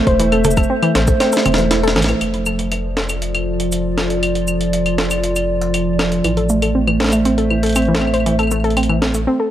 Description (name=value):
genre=IDM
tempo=119 BPM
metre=4/4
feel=straight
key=F major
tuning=A4 = 440 Hz
part: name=warbly tape-like pad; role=sustained chords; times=0.0-9.3 s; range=F3 to E5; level=-19 LUFS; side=right 2 dB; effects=chorus, built-in reverb
part: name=warbly dusty pluck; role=arpeggios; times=0.0-2.2, 6.2-9.5 s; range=E3 to C5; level=-19 LUFS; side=left 1 dB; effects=chorus, vintage 12-bit sampler grit, analog delay
part: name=warm sub bass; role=bass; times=0.1-9.3 s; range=E1 to A1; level=-21 LUFS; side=equal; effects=tube saturation
part: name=electronic kick drum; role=drums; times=0.1-1.2 s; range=none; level=-18 LUFS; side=equal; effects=none
part: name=jungle sampler-style drum kit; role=drums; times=0.1-9.2 s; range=cabasa, claves, hi-hat, snare drum, toms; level=-20 LUFS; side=equal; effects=none
room=moderate echo chamber reverb, RT60 2.0 s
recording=dry, gritty hardware recording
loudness=-14 LUFS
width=side -12 dB against mid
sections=0.0-2.2 A section; 2.2-9.5 B section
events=kick drops out 1.2-2.2; drum fill 1.2-2.2; band accent 2.0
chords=0.0 Am; 2.2 F6; 6.2 Am